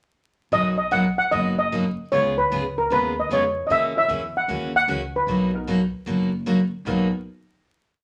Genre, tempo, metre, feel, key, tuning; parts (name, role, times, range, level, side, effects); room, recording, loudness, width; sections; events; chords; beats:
country, western swing; 152 BPM; 4/4; swing 66% on 8ths; B major; A4 = 439 Hz
steel pan; melody; 0.5-6.4 s; A#4 to F#5; -23 LUFS; equal
picked steel-string acoustic guitar; accompaniment; 0.5-7.1 s; B2 to G#4; -26 LUFS; equal
upright bass; bass; 0.5-7.1 s; F#1 to F#2; -36 LUFS; equal
clear upright piano; accompaniment; 4.0-7.1 s; B3 to A#4; -36 LUFS; equal
wet studio ambience, RT60 0.5 s; vinyl crackle; -22 LUFS; mono
0.5-6.9 A section; 6.9-8.0 final chord
0.5 Bmaj7; 2.1 C#7; 3.7 F#7; 5.3 Bmaj7
| 0.52 0.92 1.32 1.71 | 2.11 2.51 2.90 3.30 | 3.69 4.09 4.48 4.88 | 5.27 5.67 6.06 6.46 | 6.85